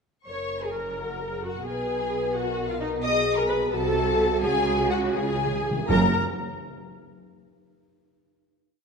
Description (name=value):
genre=classical, dramatic, fast romantic movement for symphony orchestra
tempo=78-89 BPM (dotted quarters)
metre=6/8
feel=rubato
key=F# major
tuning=A4 = 438 Hz
part: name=warm symphonic violin section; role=melody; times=0.3-6.2 s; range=D#5 to D#6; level=-31 LUFS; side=left 6 dB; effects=none
part: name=warm symphonic violin section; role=second line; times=0.3-6.2 s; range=D#4 to A#5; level=-31 LUFS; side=left 3 dB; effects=none
part: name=rich symphonic viola section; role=accompaniment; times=0.3-6.2 s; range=D#4 to D#5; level=-29 LUFS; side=right 2 dB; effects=none
part: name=warm French horn section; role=sustained chords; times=0.3-6.1 s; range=F#3 to B4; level=-29 LUFS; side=left 1 dB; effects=none
part: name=clear symphonic double bass section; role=bass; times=0.3-6.2 s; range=F#1 to C#2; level=-32 LUFS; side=right 4 dB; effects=none
part: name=warm symphonic cello section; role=bass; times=0.3-6.2 s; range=F#2 to C#3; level=-32 LUFS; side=right 4 dB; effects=none
part: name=timpani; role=percussion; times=4.4-6.1 s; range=F#2 to C#3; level=-32 LUFS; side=left 1 dB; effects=none
room=wet concert hall reverb, RT60 1.8 s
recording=none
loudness=-23 LUFS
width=side -5 dB against mid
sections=0.3-5.9 A section; 5.9-7.3 final chord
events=timpani fill 5.1-5.9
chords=0.3 F#; 1.7 G#m/B; 3.7 F#dim/C; 4.4 F#5/C#; 5.9 F#5